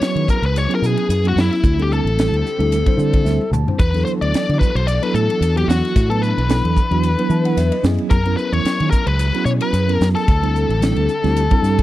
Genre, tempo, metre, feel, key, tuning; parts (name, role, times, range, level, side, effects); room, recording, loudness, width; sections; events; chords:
electric jazz fusion; 111 BPM; 4/4; swing 55% on 16ths; E minor; A4 = 438 Hz
biting lead guitar; melody; 0.0-11.8 s; E4 to D5; -21 LUFS; left 3 dB; overdrive, slapback echo
mellow tine electric piano; accompaniment; 0.0-11.8 s; F#3 to A5; -22 LUFS; right 2 dB; medium stereo tremolo
string machine, violas; sustained chords; 0.0-11.8 s; D3 to B4; -30 LUFS; equal; ensemble chorus
fingered electric bass; bass; 0.0-11.8 s; A1 to E3; -18 LUFS; equal
crisp fusion drum kit; drums; 0.0-11.8 s; hi-hat, kick drum, ride cymbal, snare drum, toms; -19 LUFS; equal
little or no reverb; dry, close 1970s-style studio recording; -15 LUFS; side -15 dB against mid
0.0-11.8 A section
tine electric piano fill 2.7-3.8, 7.0-8.1, 11.6; drum fill 3.3-3.8
0.0 F#9sus4; 1.6 D9sus4; 3.8 E9sus4; 7.8 F#9sus4; 10.3 D9sus4